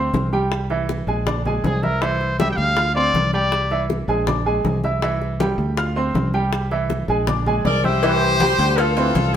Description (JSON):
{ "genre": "latin, salsa", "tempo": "160 BPM", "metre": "4/4", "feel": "straight", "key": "C major", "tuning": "A4 = 439 Hz", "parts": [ { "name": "bright upright piano", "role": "accompaniment", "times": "0.0-9.3 s", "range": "E3 to F6", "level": "-23 LUFS", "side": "right 2 dB", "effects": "none" }, { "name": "fingered electric bass", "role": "bass", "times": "0.0-9.4 s", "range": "Bb1 to D2", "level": "-23 LUFS", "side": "equal", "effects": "none" }, { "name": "bongos and cowbell", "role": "percussion", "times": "0.1-9.3 s", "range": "none", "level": "-28 LUFS", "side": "left 4 dB", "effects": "none" }, { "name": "congas", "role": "percussion", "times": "0.1-9.4 s", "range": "none", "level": "-27 LUFS", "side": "left 1 dB", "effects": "none" }, { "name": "bright trumpet", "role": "melody", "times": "1.6-3.9 s", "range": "Ab4 to G5", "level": "-21 LUFS", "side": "left 1 dB", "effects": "none" }, { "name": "bright horn section", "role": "melody", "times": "7.7-9.4 s", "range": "F4 to D5", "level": "-19 LUFS", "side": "left 2 dB", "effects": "none" }, { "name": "mellow trombone section", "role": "second line", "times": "8.0-9.4 s", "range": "D3 to E3", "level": "-26 LUFS", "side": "equal", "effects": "none" } ], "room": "moderate stone room reverb, RT60 1.2 s", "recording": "band playing live in one room", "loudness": "-17 LUFS", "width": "side -9 dB against mid", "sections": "0.0-8.0 A section; 8.0-9.4 B section", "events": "none", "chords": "0.0 D7(no3); 0.5 C; 1.3 Bb7; 2.0 Cadd9; 2.8 Dm7; 3.5 Cadd9; 4.3 Bb7; 5.0 Cadd9; 5.8 Dm7; 6.5 C; 7.3 Bb7; 8.0 Cadd9; 8.8 Dm7" }